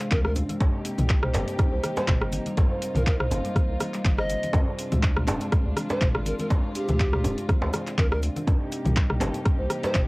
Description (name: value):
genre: afro house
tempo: 122 BPM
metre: 4/4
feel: swing 55% on 16ths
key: C minor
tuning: A4 = 440 Hz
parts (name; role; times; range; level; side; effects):
- dark chamber string section; sustained chords; 0.0-10.1 s; C3 to G4; -36 LUFS; left 1 dB; sidechain pumping, cassette tape
- kalimba; arpeggios; 0.0-10.1 s; G3 to D5; -33 LUFS; equal; sidechain pumping, cassette tape, analog delay
- deep house drum kit; drums; 0.0-10.1 s; handclaps, hi-hat, rim click, toms; -29 LUFS; equal; small room ambience, cassette tape
- cabasa; percussion; 0.0-10.1 s; none; -49 LUFS; left 2 dB; none
- breathy bright polished pan flute; melody; 0.1-10.0 s; G4 to Eb5; -31 LUFS; equal; cassette tape, analog delay
- round analog bass; bass; 0.1-10.1 s; D1 to D2; -28 LUFS; equal; sidechain pumping
- electronic kick drum; drums; 0.1-10.1 s; none; -23 LUFS; equal; small room ambience, cassette tape
- congas; percussion; 0.1-10.1 s; none; -34 LUFS; left 1 dB; none
- djembe; percussion; 0.4-9.9 s; none; -31 LUFS; right 1 dB; none
room: little or no reverb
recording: home recording on cassette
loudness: -22 LUFS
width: side -24 dB against mid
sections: 0.0-10.1 A section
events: none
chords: 0.0 Dm7b5; 0.6 Cm7; 4.5 Dm7b5; 8.5 Cm7